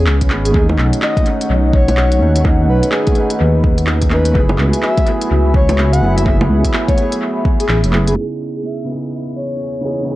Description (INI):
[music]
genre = future garage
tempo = 126 BPM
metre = 4/4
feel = swing 63% on 16ths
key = C# minor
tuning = A4 = 440 Hz
[part]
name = breathy flute-like synth lead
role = melody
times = 0.0-10.0 s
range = G#4 to F#5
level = -21 LUFS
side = left 1 dB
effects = chorus, vintage 12-bit sampler grit, dub echo
[part]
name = felt-muted upright piano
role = accompaniment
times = 0.0-10.2 s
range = C#3 to G#4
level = -21 LUFS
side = right 2 dB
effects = sidechain pumping, analog delay
[part]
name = dark analog pad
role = sustained chords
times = 0.0-10.2 s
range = C#3 to B5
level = -22 LUFS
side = left 1 dB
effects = chorus, sidechain pumping
[part]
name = dark detuned saw bass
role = bass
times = 0.0-8.1 s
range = E1 to D#2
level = -14 LUFS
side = equal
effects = tube saturation, sidechain pumping
[part]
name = organic electronic drum kit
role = drums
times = 0.1-8.1 s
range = bongos, handclaps, hi-hat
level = -22 LUFS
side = right 1 dB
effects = vintage 12-bit sampler grit, studio ambience, dub echo
[part]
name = electronic kick drum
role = drums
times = 0.2-7.6 s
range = none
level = -15 LUFS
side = equal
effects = vintage 12-bit sampler grit, studio ambience
[sound]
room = digital ambience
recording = echo-heavy mix, low-pass filter, nothing above 10.3 kHz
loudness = -12 LUFS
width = side -16 dB against mid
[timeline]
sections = 0.0-8.2 A section; 8.2-10.2 B section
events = kick drops out 7.7-8.2; band accent 7.7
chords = 0.0 G#madd11; 0.5 B9; 4.4 F#m11; 8.2 C#m9